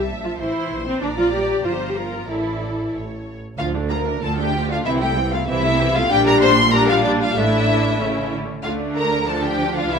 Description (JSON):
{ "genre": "quick classical-period movement for string orchestra", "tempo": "95 BPM", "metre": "2/4", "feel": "straight", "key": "D minor", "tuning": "A4 = 440 Hz", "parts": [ { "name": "warm symphonic violin section", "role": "melody", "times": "0.0-10.0 s", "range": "C#5 to C6", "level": "-23 LUFS", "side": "left 3 dB", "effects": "none" }, { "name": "rich studio violin section", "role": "second line", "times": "0.0-10.0 s", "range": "D4 to E5", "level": "-25 LUFS", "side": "left 2 dB", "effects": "none" }, { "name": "rich symphonic cello section", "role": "bass", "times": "0.0-10.0 s", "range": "D2 to G3", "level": "-26 LUFS", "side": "right 3 dB", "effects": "none" }, { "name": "rich symphonic double bass section", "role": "bass", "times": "0.0-10.0 s", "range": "G1 to D2", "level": "-27 LUFS", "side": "right 2 dB", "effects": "none" }, { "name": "warm symphonic viola section", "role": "accompaniment", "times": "0.2-10.0 s", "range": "E3 to G4", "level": "-22 LUFS", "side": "equal", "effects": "none" } ], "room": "moderate recital hall reverb, RT60 1.6 s", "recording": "minimal, uncompressed stereo recording", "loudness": "-17 LUFS", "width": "side -6 dB against mid", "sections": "0.0-3.6 A section; 3.6-10.0 A section", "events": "none", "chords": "0.0 Am; 1.0 Bb; 1.6 Gm; 2.3 Asus4; 2.9 A; 3.6 Dm; 4.9 Am/C; 6.1 Gm/Bb; 7.4 Asus4; 8.0 A; 8.6 Dm" }